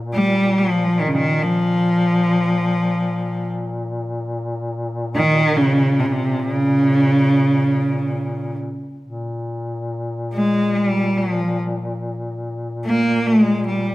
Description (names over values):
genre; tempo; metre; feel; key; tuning
caucasian folk, Caucasian lament; 71 BPM; 3/4; uneven beats, rubato; Bb dorian; A4 = 440 Hz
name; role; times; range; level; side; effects
mellow duduk; drone; 0.0-13.9 s; Bb2; -25 LUFS; left 1 dB; none
rich cello; melody; 0.1-13.9 s; C3 to Bb3; -17 LUFS; equal; none
room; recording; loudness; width
wet recital hall reverb, RT60 1.6 s; none; -17 LUFS; side -17 dB against mid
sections
0.0-13.9 A section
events
none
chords
none